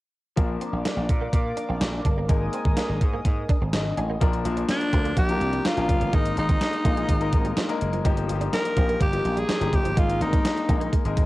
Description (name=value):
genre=1980s-style pop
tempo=125 BPM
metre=4/4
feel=straight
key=Bb mixolydian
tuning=A4 = 440 Hz
part: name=bright concert grand piano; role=accompaniment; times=0.4-11.3 s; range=F3 to Ab5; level=-30 LUFS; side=left 5 dB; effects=cassette tape
part: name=chorused pulse-width pad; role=sustained chords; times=0.4-4.2 s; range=Bb4 to Eb6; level=-33 LUFS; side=equal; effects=cassette tape
part: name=direct-recorded clean electric guitar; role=riff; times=0.4-11.2 s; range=F3 to Eb4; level=-36 LUFS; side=right 6 dB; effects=ensemble chorus, cassette tape, analog delay
part: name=gritty slap bass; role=bass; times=0.4-11.3 s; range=Gb1 to Bb2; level=-27 LUFS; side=equal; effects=overdrive
part: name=gated 80s digital drum machine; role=drums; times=0.4-11.3 s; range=hi-hat, kick drum, snare drum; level=-23 LUFS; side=equal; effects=gated reverb, gated reverb snare, overdrive
part: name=breathy alto saxophone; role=melody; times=4.7-10.9 s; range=D4 to Bb4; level=-26 LUFS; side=equal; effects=none
room=light reverb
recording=home recording on cassette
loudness=-21 LUFS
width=side -18 dB against mid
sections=0.4-4.2 A section; 4.2-11.3 B section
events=grand piano fill 3.5-4.2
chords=0.4 Bb; 2.3 Absus2; 4.2 Bb; 6.1 Absus2; 8.1 Ebadd9/G; 10.0 Absus2